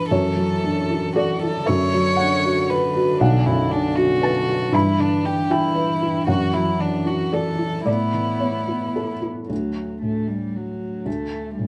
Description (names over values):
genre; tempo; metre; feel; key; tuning
neoclassical piano and strings; 116 BPM; 3/4; rubato; D major; A4 = 440 Hz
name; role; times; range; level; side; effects
warm violin; melody; 0.0-9.2 s; D4 to C#5; -26 LUFS; equal; none
dark cello; second line; 0.0-11.7 s; D3 to B3; -30 LUFS; equal; none
felt-muted upright piano; accompaniment; 0.0-11.7 s; B1 to B5; -23 LUFS; equal; none
room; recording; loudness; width
wet studio reverb, RT60 0.6 s; band playing live in one room, nothing above 10.8 kHz; -21 LUFS; mono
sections
0.0-9.5 A section; 9.5-11.7 B section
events
none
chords
0.1 Dadd9/F#; 1.7 Bm/F#; 3.2 Bm; 4.7 G6; 6.3 Dadd9/F#; 7.9 Aadd9; 9.5 D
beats
| 0.11 0.64 1.15 | 1.67 2.19 2.69 | 3.21 3.71 4.22 | 4.74 5.25 5.76 | 6.28 6.80 7.33 | 7.87 8.42 8.96 | 9.50 10.03 10.55 | 11.07 11.58